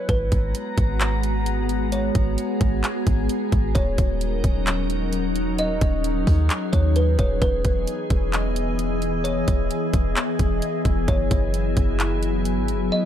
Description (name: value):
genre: hip hop, atmospheric cloud-rap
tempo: 131 BPM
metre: 4/4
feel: half-time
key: G# minor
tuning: A4 = 440 Hz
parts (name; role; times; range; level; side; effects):
- kalimba; melody; 0.0-13.1 s; B4 to D#5; -30 LUFS; equal; low-pass filter, tape echo
- drifting glass-harmonics texture; texture; 0.0-13.1 s; B3 to A#5; -37 LUFS; right 3 dB; chorus, built-in reverb
- glassy FM pad; sustained chords; 0.1-13.1 s; E3 to A#5; -25 LUFS; left 2 dB; ensemble chorus, built-in reverb, sidechain pumping
- warm 808-style bass; bass; 0.1-12.9 s; D#1 to D#2; -23 LUFS; equal; none
- trap drum kit; drums; 0.1-12.8 s; handclaps, hi-hat, kick drum; -23 LUFS; equal; none
room: little or no reverb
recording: dark, warm production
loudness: -20 LUFS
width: side -10 dB against mid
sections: 0.1-13.1 A section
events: none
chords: 0.1 G#m9; 3.8 D#m7; 7.4 Emaj7; 11.1 F#9sus4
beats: | 0.09 0.55 1.00 1.46 | 1.92 2.38 2.84 3.29 | 3.75 4.21 4.67 5.13 | 5.58 6.04 6.50 6.96 | 7.42 7.88 8.33 8.79 | 9.25 9.71 10.16 10.62 | 11.08 11.54 12.00 12.46 | 12.91